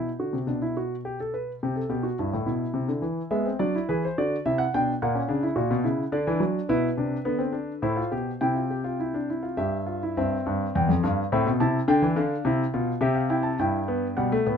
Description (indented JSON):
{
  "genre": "classical, baroque-style 3-part fugue for grand piano",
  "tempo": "106 BPM",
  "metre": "3/4",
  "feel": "straight",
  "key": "C major",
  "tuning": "A4 = 440 Hz",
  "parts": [
    { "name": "warm concert grand piano", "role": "solo", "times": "0.0-14.6 s", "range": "E2 to A5", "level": "-24 LUFS", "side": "left 1 dB", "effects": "none" }
  ],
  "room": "light reverb",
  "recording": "none",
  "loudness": "-24 LUFS",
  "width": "side -7 dB against mid",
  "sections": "0.0-10.2 A section; 10.2-13.6 B section",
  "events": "none",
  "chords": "0.0 Bm; 1.1 G/B; 1.6 C; 2.8 Cadd9; 3.3 E7; 4.5 Cmaj9#11; 5.0 F#7/A#; 6.1 Dadd9; 6.7 Bmadd11; 7.8 Am; 8.4 C; 9.6 Em/G; 10.2 C/G; 11.3 Am; 11.9 Dm7; 13.0 C; 13.6 Em/G"
}